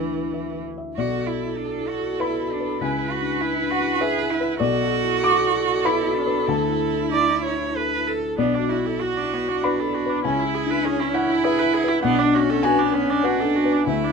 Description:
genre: neoclassical piano and strings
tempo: 90-102 BPM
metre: 3/4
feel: rubato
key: B dorian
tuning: A4 = 440 Hz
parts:
  - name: clear cello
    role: second line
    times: 0.0-14.1 s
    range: E3 to G#4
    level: -25 LUFS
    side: right 8 dB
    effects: none
  - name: felt-muted upright piano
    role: accompaniment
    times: 0.0-14.1 s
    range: B1 to D6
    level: -23 LUFS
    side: left 4 dB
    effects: none
  - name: clear viola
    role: accompaniment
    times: 1.0-14.1 s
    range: A3 to D5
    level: -25 LUFS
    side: right 4 dB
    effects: none
room: moderate studio reverb, RT60 0.5 s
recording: minimal, uncompressed stereo recording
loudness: -19 LUFS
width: side -5 dB against mid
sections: 1.0-14.1 A section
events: none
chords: 0.0 Dsus2; 1.0 Bm7; 2.8 C#m7; 4.6 Bm7; 6.5 Dsus2; 8.4 Bm7; 10.2 C#m7; 12.0 Bm7

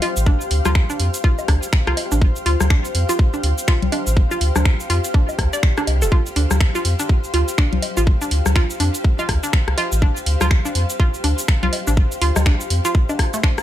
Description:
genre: minimal techno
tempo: 123 BPM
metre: 4/4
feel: swing 60% on 16ths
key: D minor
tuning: A4 = 437 Hz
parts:
  - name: hollow square pluck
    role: riff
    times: 0.0-13.5 s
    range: A3 to D5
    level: -24 LUFS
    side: right 1 dB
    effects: chorus, sidechain pumping, tape echo
  - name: garage drum kit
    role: drums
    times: 0.0-13.6 s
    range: cabasa, finger snaps, hi-hat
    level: -25 LUFS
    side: right 1 dB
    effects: overdrive, studio reverb
  - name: electronic woodblock, rim click and congas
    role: percussion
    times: 0.0-13.6 s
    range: none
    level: -25 LUFS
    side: left 5 dB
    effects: studio reverb, tape echo
  - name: granular cloud pad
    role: texture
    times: 0.0-13.6 s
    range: G4 to F5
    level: -28 LUFS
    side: left 2 dB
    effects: built-in reverb, sidechain pumping
  - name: saturated sub bass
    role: bass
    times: 0.2-12.8 s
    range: D1 to F2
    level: -19 LUFS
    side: equal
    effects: sidechain pumping
  - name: electronic kick drum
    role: drums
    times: 0.3-13.6 s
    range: none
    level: -16 LUFS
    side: equal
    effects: overdrive, studio reverb
room: little or no reverb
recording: none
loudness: -16 LUFS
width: side -12 dB against mid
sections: 0.0-13.6 A section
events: none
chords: 0.0 Dm7

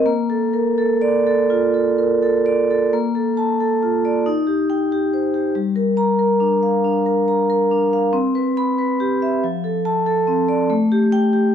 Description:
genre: classical, contemporary piece for solo vibraphone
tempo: 82-95 BPM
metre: 4/4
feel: rubato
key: Bb major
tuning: A4 = 441 Hz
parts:
  - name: vibraphone with medium hard mallets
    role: solo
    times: 0.0-11.5 s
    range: F3 to B5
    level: -16 LUFS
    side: equal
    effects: none
room: moderate stone room reverb, RT60 1.1 s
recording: dark, warm production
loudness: -16 LUFS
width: side -8 dB against mid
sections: 0.0-2.9 A section; 2.9-11.5 A section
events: none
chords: 0.0 Bbmaj7; 4.3 Eb6; 5.5 Gm7; 8.1 Cmaj7; 9.4 F6; 10.7 A7(no3)

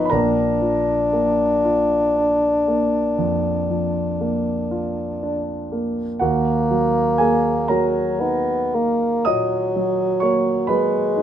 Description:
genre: classical, romantic duo for bassoon and grand piano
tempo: 37-43 BPM (dotted quarters)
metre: 12/8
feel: rubato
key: Eb minor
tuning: A4 = 440 Hz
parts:
  - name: mellow bassoon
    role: melody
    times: 0.0-11.2 s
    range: Gb3 to Eb4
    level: -20 LUFS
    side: left 1 dB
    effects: none
  - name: warm concert grand piano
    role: accompaniment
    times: 0.0-11.2 s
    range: Bb1 to Eb6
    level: -21 LUFS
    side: right 2 dB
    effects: none
room: light reverb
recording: none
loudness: -18 LUFS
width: side -10 dB against mid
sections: 0.0-11.2 A section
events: none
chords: 0.1 Bb; 6.2 Ebm

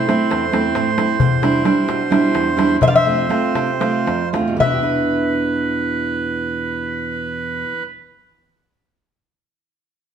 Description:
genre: greek folk, Greek bouzouki band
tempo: 216-268 BPM (eighths)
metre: 7/8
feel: straight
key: E phrygian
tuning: A4 = 439 Hz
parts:
  - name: Greek bouzouki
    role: melody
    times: 0.0-7.8 s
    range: E5 to F5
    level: -19 LUFS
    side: left 3 dB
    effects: none
  - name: accordion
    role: second line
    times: 0.0-7.8 s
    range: B4 to D5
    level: -22 LUFS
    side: right 4 dB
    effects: none
  - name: fingerpicked steel-string acoustic guitar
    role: accompaniment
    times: 0.0-8.1 s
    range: E2 to B4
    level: -19 LUFS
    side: right 3 dB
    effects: none
  - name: darbuka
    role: percussion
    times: 0.1-4.9 s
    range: none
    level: -22 LUFS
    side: left 3 dB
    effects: none
room: wet stone room reverb, RT60 1.1 s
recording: band playing live in one room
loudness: -16 LUFS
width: side -8 dB against mid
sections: 0.0-4.6 A section; 4.6-8.5 B section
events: slowing down 1.2-4.6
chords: 0.0 Am; 1.2 Em7; 2.8 F; 4.6 E7(no3)

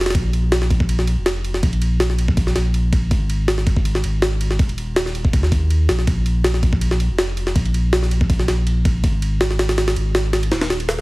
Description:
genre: drum and bass, jungle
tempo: 162 BPM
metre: 4/4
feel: straight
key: unclear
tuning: A4 = 441 Hz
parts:
  - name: saturated sub bass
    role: bass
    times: 0.0-11.0 s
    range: Eb1 to Eb2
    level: -19 LUFS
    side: equal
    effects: none
  - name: jungle sampler-style drum kit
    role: drums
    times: 0.0-11.0 s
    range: kick drum, ride cymbal, snare drum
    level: -19 LUFS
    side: equal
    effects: studio reverb
room: digital ambience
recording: heavily compressed radio sound, vinyl crackle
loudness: -16 LUFS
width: side -21 dB against mid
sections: 0.0-11.0 A section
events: none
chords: none

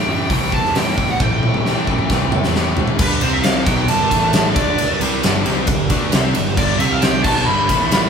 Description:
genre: quiet-loud alternative rock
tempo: 134 BPM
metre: 4/4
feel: straight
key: G major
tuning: A4 = 440 Hz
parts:
  - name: lead guitar through a small cranked amp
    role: melody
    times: 0.0-8.1 s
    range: B4 to B5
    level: -20 LUFS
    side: right 1 dB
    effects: overdrive
  - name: thick fuzz guitar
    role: riff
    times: 0.0-8.1 s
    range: G2 to E4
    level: -22 LUFS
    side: right 6 dB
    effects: distortion
  - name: tight distorted guitar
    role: riff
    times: 0.0-8.1 s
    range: G2 to D4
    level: -24 LUFS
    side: left 8 dB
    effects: distortion
  - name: fuzz picked electric bass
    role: bass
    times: 0.1-8.1 s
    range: G1 to F#2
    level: -24 LUFS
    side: equal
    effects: overdrive
  - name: big rock drum kit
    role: drums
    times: 0.3-8.0 s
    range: crash cymbal, hi-hat, kick drum, ride cymbal, snare drum, toms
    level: -18 LUFS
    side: left 1 dB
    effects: none
  - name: rich chamber string section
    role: sustained chords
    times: 3.0-8.1 s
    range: C3 to G5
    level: -32 LUFS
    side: left 1 dB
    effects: none
room: moderate large studio reverb, RT60 0.9 s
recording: band playing live in one room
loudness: -14 LUFS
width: side -6 dB against mid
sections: 0.0-3.0 A section; 3.0-8.1 B section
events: drum fill 1.2-3.0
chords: 0.0 Am7; 3.0 G; 3.2 C5; 3.7 G; 4.1 A5; 4.6 G; 6.8 C5; 7.2 G

